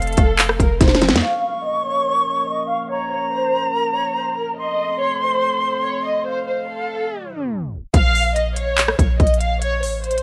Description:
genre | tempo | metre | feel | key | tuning
hip hop, trap | 143 BPM | 4/4 | half-time | Bb harmonic minor | A4 = 440 Hz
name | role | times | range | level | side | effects
dark symphonic violin section | melody | 0.0-10.2 s | A4 to F5 | -25 LUFS | equal | low-pass filter
silver concert flute | second line | 0.0-7.5 s | F5 to Db6 | -25 LUFS | equal | tape echo
hollow square pluck | accompaniment | 0.0-1.2 s | F2 to A3 | -29 LUFS | equal | none
dark analog pad | sustained chords | 0.0-7.9 s | F3 to Bb4 | -35 LUFS | equal | subtle chorus, low-pass filter
warm 808-style bass | bass | 0.0-1.2, 7.9-10.2 s | F1 to F2 | -24 LUFS | equal | none
trap drum kit | drums | 0.0-1.3, 7.9-10.2 s | handclaps, hi-hat, kick drum, rim click, snare drum | -18 LUFS | equal | vintage 12-bit sampler grit
room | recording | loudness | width
light reverb, digital ambience | rough home demo mix, tape stop | -19 LUFS | mono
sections
0.0-1.2 A section; 1.2-7.9 B section; 7.9-10.2 C section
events
drum fill 0.8-1.2; filter sweep 1.2-7.9; tape stop 7.1-7.9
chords
0.0 F; 1.2 Bbm; 4.6 F; 7.9 Bbm

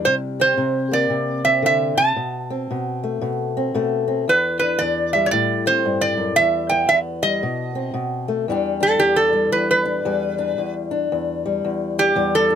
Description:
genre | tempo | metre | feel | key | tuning
acoustic country blues, solo or duo | 114 BPM | 4/4 | swing 62% on 8ths | E minor | A4 = 444 Hz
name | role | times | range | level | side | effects
fingerpicked old ladder-braced acoustic guitar | accompaniment | 0.0-12.6 s | E2 to G4 | -22 LUFS | left 3 dB | none
metal-body resonator slide guitar | melody | 0.1-12.5 s | G4 to A5 | -17 LUFS | right 2 dB | none
room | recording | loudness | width
light reverb | close, detailed microphones | -18 LUFS | side -8 dB against mid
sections
0.0-8.5 A section; 8.5-12.6 B section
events
resonator guitar played with a steel bar solo 8.5-12.6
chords
0.1 C5; 2.2 Amadd9/B; 4.3 Em7; 5.3 Am7; 6.4 Em; 7.4 B7b9; 8.5 Em7

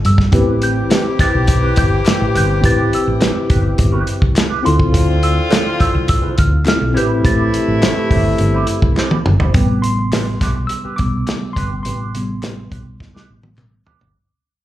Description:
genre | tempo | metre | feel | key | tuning
lush 1970s-style soul | 104 BPM | 4/4 | straight | A minor | A4 = 439 Hz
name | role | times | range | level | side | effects
mellow tine electric piano | accompaniment | 0.0-14.2 s | C3 to E6 | -21 LUFS | left 1 dB | medium stereo tremolo, slapback echo
hollow-body short-scale fingered electric bass | bass | 0.0-14.1 s | G1 to G2 | -17 LUFS | equal | none
warm soul drum kit | drums | 0.0-14.1 s | hi-hat, kick drum, snare drum, toms | -16 LUFS | equal | none
small celesta | melody | 0.1-8.9 s | C6 to A6 | -23 LUFS | right 1 dB | slapback echo
mellow electric guitar | riff | 0.3-14.1 s | C4 to C5 | -26 LUFS | right 6 dB | wah, phaser, slapback echo
warm horn section | stabs | 0.3-9.2 s | C3 to G4 | -20 LUFS | left 2 dB | slapback echo
group handclap | percussion | 0.9-13.7 s | none | -32 LUFS | left 2 dB | none
room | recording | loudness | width
studio reverb | live gig heard through the venue's PA, club reverb | -13 LUFS | side -13 dB against mid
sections
0.0-9.5 A section; 9.5-14.2 B section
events
drum fill 9.0-9.5, 13.0-14.2; fade-out 9.5-14.2; tine electric piano solo 9.5-14.2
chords
0.3 Am9; 4.6 Dm7; 7.0 Am7; 9.5 Am9

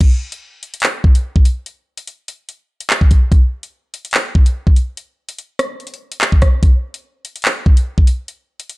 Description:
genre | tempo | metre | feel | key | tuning
hip hop | 145 BPM | 4/4 | half-time | none | none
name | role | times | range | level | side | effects
drill drum kit | drums | 0.0-8.8 s | crash cymbal, handclaps, hi-hat, kick drum, rim click | -12 LUFS | equal | vintage 12-bit sampler grit
room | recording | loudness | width
little or no reverb | none | -13 LUFS | side -22 dB against mid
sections
0.0-8.8 A section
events
none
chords
none

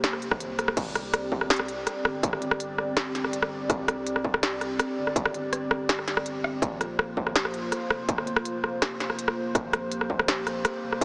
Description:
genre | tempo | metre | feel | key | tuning
half-time drum and bass | 164 BPM | 4/4 | half-time | unclear | A4 = 441 Hz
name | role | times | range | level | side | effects
dark analog pad | sustained chords | 0.0-11.0 s | Bb3 to D5 | -31 LUFS | equal | chorus, vintage 12-bit sampler grit, sidechain pumping
saturated sub bass | bass | 0.0-11.0 s | F1 to C2 | -44 LUFS | equal | none
industrial drum kit | drums | 0.0-11.0 s | crash cymbal, hi-hat, rim click, snare drum | -26 LUFS | equal | none
electronic kick drum | drums | 0.3-11.0 s | none | -29 LUFS | equal | distortion
room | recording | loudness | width
moderate huge ambient reverb, RT60 4.7 s | heavily compressed radio sound, small speaker sound | -25 LUFS | side -31 dB against mid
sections
0.8-11.0 A section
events
drum fill 0.6; drop 0.8-11.0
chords
0.0 Bb5; 0.8 C5; 6.6 Bb5

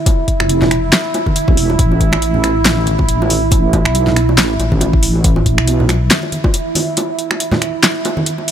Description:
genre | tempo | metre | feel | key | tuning
deep dubstep | 139 BPM | 4/4 | swing 56% on 16ths, half-time | unclear | A4 = 439 Hz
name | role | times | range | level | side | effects
deep dark ambient pad | sustained chords | 0.0-8.5 s | E4 | -18 LUFS | right 4 dB | chorus, built-in reverb
deep house drum kit | drums | 0.1-8.5 s | finger snaps, handclaps, hi-hat, snare drum | -16 LUFS | equal | none
electronic kick drum | drums | 0.1-6.5 s | none | -15 LUFS | left 1 dB | none
bongos and congas | percussion | 0.1-8.5 s | none | -22 LUFS | right 1 dB | dub echo
deep soft wobble bass | bass | 0.4-6.1 s | E1 to B1 | -15 LUFS | left 1 dB | chorus
room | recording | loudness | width
light reverb, digital ambience | none | -12 LUFS | side -9 dB against mid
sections
0.0-8.5 A section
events
break 7.0-8.5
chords
0.0 E5; 1.8 A5

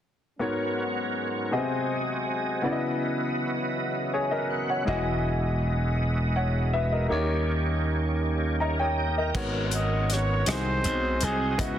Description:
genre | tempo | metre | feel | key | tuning
slow gospel | 54 BPM (dotted quarters) | 6/8 | straight | G# minor | A4 = 441 Hz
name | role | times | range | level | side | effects
clear grand piano | accompaniment | 0.4-11.8 s | G#2 to A#5 | -29 LUFS | left 2 dB | none
mellow French horn section | sustained chords | 0.4-11.8 s | C#2 to D#5 | -37 LUFS | right 1 dB | none
overdriven tonewheel organ | sustained chords | 0.4-11.8 s | G#2 to A#5 | -32 LUFS | right 2 dB | slow rotary speaker, chorus vibrato
glassy slap bass | bass | 4.9-11.8 s | E1 to D#2 | -27 LUFS | equal | none
warm soul drum kit | drums | 9.3-11.8 s | crash cymbal, hi-hat, kick drum, rim click | -31 LUFS | left 1 dB | soft clipping on snare
breathy trumpet | melody | 9.7-11.8 s | F#4 to D#5 | -29 LUFS | right 1 dB | tape echo
room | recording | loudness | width
light reverb, studio reverb | dense, heavily limited modern master | -24 LUFS | side -10 dB against mid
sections
0.4-9.3 A section; 9.3-11.8 B section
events
tonewheel organ fill 3.8-4.9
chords
0.4 G#m11; 1.5 G#7/B#; 2.6 C#m11; 4.9 Emaj9; 7.1 D#7; 9.3 G#m11; 10.5 G#7

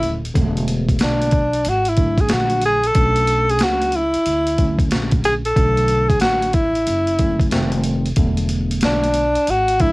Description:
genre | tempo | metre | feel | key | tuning
hip hop, jazz-hop | 92 BPM | 4/4 | swing 63% on 16ths | B dorian | A4 = 441 Hz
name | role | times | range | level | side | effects
mellow tenor saxophone | melody | 0.0-9.9 s | D4 to A4 | -17 LUFS | equal | none
tine electric piano | accompaniment | 0.0-9.9 s | D3 to D4 | -24 LUFS | equal | medium stereo tremolo, cassette tape
upright bass | bass | 0.0-9.9 s | D#1 to D2 | -22 LUFS | equal | none
boom bap sampler-style drum kit | drums | 0.0-9.9 s | hi-hat, kick drum, snare drum | -20 LUFS | equal | none
room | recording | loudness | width
light reverb | home recording on cassette | -15 LUFS | side -23 dB against mid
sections
0.0-9.9 A section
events
none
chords
0.0 E9sus4; 3.0 Bm9; 7.5 F9; 8.2 E9sus4

